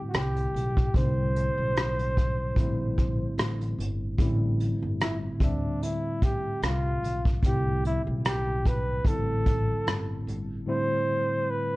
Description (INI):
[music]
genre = lo-fi hip hop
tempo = 74 BPM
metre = 4/4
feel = swing 55% on 16ths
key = A minor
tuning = A4 = 440 Hz
[part]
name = breathy flugelhorn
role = melody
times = 0.0-11.8 s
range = D4 to C5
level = -31 LUFS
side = right 1 dB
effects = low-pass filter
[part]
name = mellow tine electric piano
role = accompaniment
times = 0.0-11.8 s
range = A2 to E5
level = -32 LUFS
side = equal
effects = medium stereo tremolo, low-pass filter
[part]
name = upright bass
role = bass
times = 0.1-10.6 s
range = G1 to D2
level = -30 LUFS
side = equal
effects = none
[part]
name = vintage brush drum kit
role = drums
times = 0.1-10.5 s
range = hi-hat, kick drum, rim click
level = -28 LUFS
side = equal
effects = vintage 12-bit sampler grit
[sound]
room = light reverb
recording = cassette tape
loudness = -24 LUFS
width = side -20 dB against mid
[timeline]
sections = 0.0-10.7 A section; 10.7-11.8 B section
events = none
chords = 0.0 D9sus4; 2.6 Bb69; 4.2 Am7; 5.4 C69; 9.1 Am7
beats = 0.13 | 0.94 1.75 2.56 3.38 | 4.19 5.00 5.81 6.62 | 7.43 8.24 9.05 9.86 | 10.67 11.48